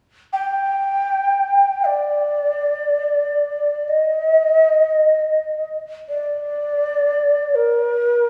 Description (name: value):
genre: japanese traditional, Japanese chamber music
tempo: free time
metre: none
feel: none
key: unclear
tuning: A4 = 440 Hz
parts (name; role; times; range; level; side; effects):
- mellow hollow shakuhachi; solo; 0.3-8.3 s; Bb4 to G5; -19 LUFS; equal; none
room: wet scoring stage reverb, RT60 1.7 s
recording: recorded in a church or concert hall, studio reverb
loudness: -19 LUFS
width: mono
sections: 0.0-8.3 A section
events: none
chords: none